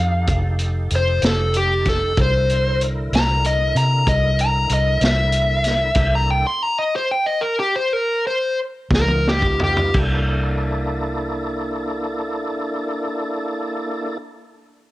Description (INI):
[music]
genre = slow blues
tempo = 57-64 BPM (dotted quarters)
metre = 12/8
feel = straight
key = C mixolydian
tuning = A4 = 440 Hz
[part]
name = dark smooth lead guitar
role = melody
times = 0.0-10.0 s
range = G4 to C6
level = -19 LUFS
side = left 1 dB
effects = overdrive, cassette tape
[part]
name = tonewheel organ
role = sustained chords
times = 0.0-14.2 s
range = D3 to Bb4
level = -27 LUFS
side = equal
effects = slow rotary speaker, overdrive, chorus vibrato, cassette tape
[part]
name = vintage muted fingered electric bass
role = bass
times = 0.0-14.2 s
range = F1 to C3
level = -20 LUFS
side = equal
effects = none
[part]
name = vintage drum kit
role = drums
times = 0.3-10.1 s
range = crash cymbal, hi-hat, kick drum, snare drum, toms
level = -22 LUFS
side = equal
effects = cassette tape
[sound]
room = small room ambience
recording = home recording on cassette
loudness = -17 LUFS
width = side -16 dB against mid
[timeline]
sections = 0.0-9.9 A section; 9.9-14.2 B section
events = lead electric guitar solo 0.0-9.9; slowing down 4.7-9.9; stop 6.0-8.9; drum fill 8.9-9.9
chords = 0.0 F9; 2.2 C9; 6.0 C13; 8.9 Db9; 9.9 C13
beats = 0.28 1.23 | 2.17 3.12 4.07 5.01 | 5.96 6.92 7.90 8.91 | 9.95 11.00 12.06 13.11